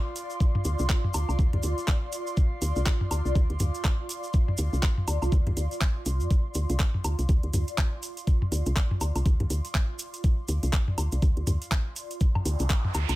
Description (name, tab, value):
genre	minimal techno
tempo	122 BPM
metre	4/4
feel	swing 59% on 16ths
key	D minor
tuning	A4 = 440 Hz
part	airy breathy pad	texture	0.0-13.2 s	F4 to C6	-37 LUFS	right 1 dB	chorus, phaser, sidechain pumping
part	garage drum kit	drums	0.2-13.2 s	handclaps, hi-hat	-33 LUFS	equal	studio reverb
part	tube shaker	percussion	0.2-13.2 s	none	-39 LUFS	right 3 dB	none
part	electronic kick drum	drums	0.4-12.8 s	none	-24 LUFS	equal	studio reverb
part	electronic toms and woodblock	percussion	0.6-13.2 s	none	-30 LUFS	left 1 dB	studio reverb
part	woody FM bass	bass	0.7-13.2 s	C2 to F2	-26 LUFS	equal	sidechain pumping
part	noise sweep	sound effects	12.5-13.2 s	none	-35 LUFS	right 5 dB	none
room	little or no reverb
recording	none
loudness	-24 LUFS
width	side -18 dB against mid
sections	0.0-13.2 A section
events	noise sweep 12.5-13.2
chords	0.0 Dm7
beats	| 0.41 0.90 1.39 1.88 | 2.37 2.86 3.35 3.85 | 4.34 4.83 5.32 5.81 | 6.31 6.80 7.29 7.78 | 8.27 8.77 9.26 9.75 | 10.24 10.73 11.22 11.72 | 12.21 12.70